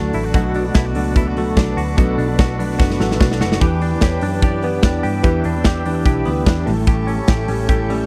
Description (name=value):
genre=jangly indie pop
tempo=147 BPM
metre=4/4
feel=straight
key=B minor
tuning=A4 = 440 Hz
part: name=fingerpicked steel-string acoustic guitar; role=accompaniment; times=0.0-8.1 s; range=A2 to A4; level=-26 LUFS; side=equal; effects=none
part: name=warbly lo-fi synth keys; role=accompaniment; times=0.0-8.1 s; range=A3 to D5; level=-27 LUFS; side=equal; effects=chorus
part: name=ensemble organ-string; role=sustained chords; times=0.0-8.1 s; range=A4 to D6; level=-34 LUFS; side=equal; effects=ensemble chorus
part: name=direct-recorded clean electric guitar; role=arpeggios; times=0.0-8.1 s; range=A2 to G4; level=-26 LUFS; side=equal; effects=tremolo
part: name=vintage muted picked electric bass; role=bass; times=0.0-8.1 s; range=F#1 to G2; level=-25 LUFS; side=equal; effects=none
part: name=big rock drum kit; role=drums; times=0.1-8.0 s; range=hi-hat, kick drum, snare drum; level=-19 LUFS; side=equal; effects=none
room=little or no reverb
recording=dry, close 1970s-style studio recording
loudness=-17 LUFS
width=mono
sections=0.0-8.1 A section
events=drum fill 2.8-3.6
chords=0.3 Bm7; 3.6 Em7; 6.7 A7